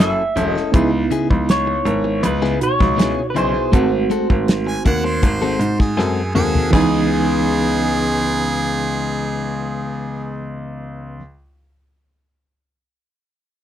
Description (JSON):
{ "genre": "straight-eighth soul blues", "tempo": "80 BPM", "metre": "4/4", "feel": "straight", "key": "C# minor", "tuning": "A4 = 440 Hz", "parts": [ { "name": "electric guitar through a small old amp", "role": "melody", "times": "0.0-11.2 s", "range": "G#4 to E5", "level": "-22 LUFS", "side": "equal", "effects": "none" }, { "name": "barky reed electric piano", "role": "accompaniment", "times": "0.0-11.2 s", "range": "B2 to G#4", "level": "-23 LUFS", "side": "right 5 dB", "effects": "medium tremolo" }, { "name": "direct-recorded clean electric guitar", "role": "stabs", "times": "0.0-11.2 s", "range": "C#3 to A4", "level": "-23 LUFS", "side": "left 6 dB", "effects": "none" }, { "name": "bright concert grand piano", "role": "bass", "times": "0.0-11.2 s", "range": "E1 to G#2", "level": "-22 LUFS", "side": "equal", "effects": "none" }, { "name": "damped 70s drum kit", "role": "drums", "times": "0.0-6.9 s", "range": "crash cymbal, hi-hat, kick drum, snare drum, toms", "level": "-17 LUFS", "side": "equal", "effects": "none" }, { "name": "bright harmonica", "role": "second line", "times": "4.7-10.5 s", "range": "G#4 to G#5", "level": "-24 LUFS", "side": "right 3 dB", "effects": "none" } ], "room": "little or no reverb", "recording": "dry, close 1970s-style studio recording", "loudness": "-16 LUFS", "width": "side -11 dB against mid", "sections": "0.0-6.7 A section; 6.7-9.7 B section", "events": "drum fill 6.0-6.7", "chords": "0.0 F#m7; 0.7 C#m7; 3.7 G#7b9; 6.7 C#m7" }